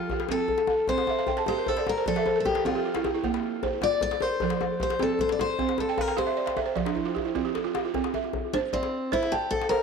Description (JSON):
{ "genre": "west african traditional, West African string and xylophone music", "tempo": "102 BPM (dotted quarters)", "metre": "12/8", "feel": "straight", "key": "C mixolydian", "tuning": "A4 = 440 Hz", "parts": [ { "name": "picked steel-string acoustic guitar", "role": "melody", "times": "0.0-9.8 s", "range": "C4 to D5", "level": "-27 LUFS", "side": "left 3 dB", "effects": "tape echo" }, { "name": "balafon", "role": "arpeggios", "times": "0.0-9.8 s", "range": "F3 to A5", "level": "-28 LUFS", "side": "right 9 dB", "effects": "tape echo" }, { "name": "djembe", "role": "percussion", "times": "0.1-9.8 s", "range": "none", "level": "-33 LUFS", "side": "left 7 dB", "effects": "none" } ], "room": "moderate plate reverb, RT60 2.9 s", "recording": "1960s-style stereo with parts hard left and right", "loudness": "-24 LUFS", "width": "side -6 dB against mid", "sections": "0.0-7.9 A section; 7.9-9.8 B section", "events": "balafon fill 1.1-3.2, 5.9-7.9; drum fill 7.0-7.9; steel-string acoustic guitar solo 7.9-9.8", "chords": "0.0 F; 0.9 C5; 2.1 F5; 3.2 Bb5; 4.4 F; 5.6 C5; 6.8 F5; 7.9 C" }